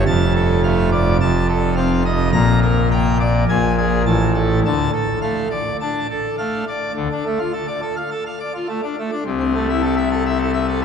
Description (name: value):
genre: classical, organ toccata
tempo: 105 BPM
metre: 4/4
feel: straight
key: D minor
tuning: A4 = 440 Hz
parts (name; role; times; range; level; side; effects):
- pipe organ, full organ; solo; 0.0-10.8 s; F1 to Bb5; -16 LUFS; equal; none
room: wet cathedral reverb, RT60 5.9 s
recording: dark, warm production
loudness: -16 LUFS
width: side -7 dB against mid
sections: 0.0-7.0 A section; 7.0-10.8 B section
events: none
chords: 0.1 Dm/F; 1.2 F7; 2.3 Bb6; 3.5 G#sus2/A#; 4.1 N.C.; 4.6 Dm; 9.2 Am/C